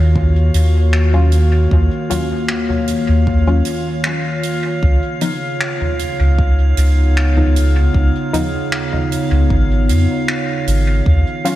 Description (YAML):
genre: ambient dub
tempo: 77 BPM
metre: 4/4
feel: straight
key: unclear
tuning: A4 = 442 Hz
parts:
  - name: warbly tape-like pad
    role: sustained chords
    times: 0.0-11.6 s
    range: Db3 to Db5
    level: -20 LUFS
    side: equal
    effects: chorus, built-in reverb
  - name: soft dub sub bass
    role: bass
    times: 0.0-11.2 s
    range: Ab1 to F2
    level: -12 LUFS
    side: equal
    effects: none
  - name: drifting glass-harmonics texture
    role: texture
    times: 0.0-11.6 s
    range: F5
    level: -28 LUFS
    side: right 1 dB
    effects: chorus, built-in reverb
  - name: electronic kick drum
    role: drums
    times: 0.2-11.2 s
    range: none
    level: -18 LUFS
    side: equal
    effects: none
  - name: soft-mallet drum kit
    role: drums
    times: 0.5-11.6 s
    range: finger snaps, hi-hat, toms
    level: -24 LUFS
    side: equal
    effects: dub echo
  - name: filtered dub chord stab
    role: stabs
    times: 1.1-11.6 s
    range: F3 to F4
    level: -25 LUFS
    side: left 2 dB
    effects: chorus, dub echo
room: studio reverb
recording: none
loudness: -13 LUFS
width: side -14 dB against mid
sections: 0.0-11.6 A section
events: none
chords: 0.0 Ebm7; 4.8 Db7